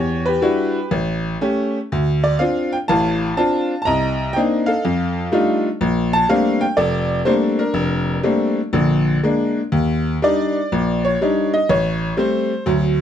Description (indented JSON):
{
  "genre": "solo jazz",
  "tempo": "123 BPM",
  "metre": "4/4",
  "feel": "swing 68% on 8ths, rubato",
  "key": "Bb major",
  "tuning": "A4 = 442 Hz",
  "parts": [
    { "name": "tack piano", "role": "solo", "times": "0.0-13.0 s", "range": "F1 to Bb5", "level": "-16 LUFS", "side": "equal", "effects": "none" }
  ],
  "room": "light reverb",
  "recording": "close, detailed microphones",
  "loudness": "-16 LUFS",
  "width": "side -9 dB against mid",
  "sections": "0.0-9.7 A section; 9.7-13.0 B section",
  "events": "honky-tonk piano solo 9.7-13.0",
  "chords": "0.0 Em9; 0.9 A7; 1.9 Dm7; 3.9 Cm9; 4.8 F13; 5.8 Bbmaj13; 8.7 Bb7; 9.7 Ebmaj7; 11.7 A7#9",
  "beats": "0.43 0.92 1.41 | 1.91 2.40 2.89 3.38 | 3.86 4.35 4.84 5.32 | 5.80 6.29 6.77 7.25 | 7.74 8.23 8.72 9.23 | 9.73 10.22 10.71 11.20 | 11.69 12.17 12.65"
}